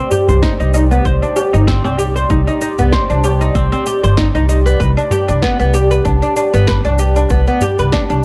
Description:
organic downtempo; 96 BPM; 4/4; swing 55% on 16ths; C harmonic minor; A4 = 440 Hz
warm analog pad; sustained chords; 0.0-8.2 s; G4 to D5; -25 LUFS; equal; chorus, sidechain pumping
oud; arpeggios; 0.0-8.2 s; B3 to C5; -18 LUFS; equal; low-pass filter, tape echo
electronic cabasa and snare drum; drums; 0.1-8.2 s; -27 LUFS; equal; overdrive
tabla; percussion; 0.1-8.2 s; -26 LUFS; equal
upright bass; bass; 0.3-8.2 s; G1 to C2; -17 LUFS; equal
electronic kick drum; drums; 0.4-8.1 s; -21 LUFS; equal; overdrive
small room ambience; dry, gritty hardware recording, cassette tape; -14 LUFS; mono
0.0-8.2 A section
0.0 Cmadd9; 4.8 G

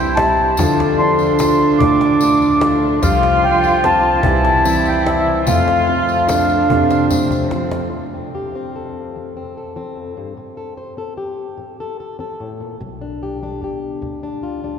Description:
acoustic folk duo or small band; 49 BPM (dotted quarters); 6/8; straight; F major; A4 = 440 Hz
mellow accordion; melody; 0.0-7.1 s; E5 to D6; -17 LUFS; left 1 dB
warm cello; second line; 0.0-7.9 s; C4 to F4; -19 LUFS; right 3 dB
fingerpicked plugged-in steel-string acoustic guitar; accompaniment; 0.0-14.8 s; F2 to C5; -22 LUFS; left 4 dB
pedal harmonium; sustained chords; 0.0-7.9 s; E4 to C6; -28 LUFS; equal
bright upright piano; arpeggios; 0.0-8.0 s; E3 to A4; -25 LUFS; right 3 dB
upright bass; bass; 0.0-7.9, 12.8-14.8 s; B1 to B2; -25 LUFS; equal
cajon; percussion; 0.2-7.9 s; -24 LUFS; left 1 dB
tambourine; percussion; 0.6-7.4 s; -33 LUFS; left 5 dB
wet cathedral reverb, RT60 5.4 s; recorded in a church or concert hall; -13 LUFS; side -7 dB against mid
0.0-7.9 A section; 7.9-14.8 B section
drum fill 7.1-7.9
0.0 C; 0.6 Dm; 3.0 Csus4; 4.2 Cadd9; 5.5 F; 10.4 Am; 12.8 G7/B

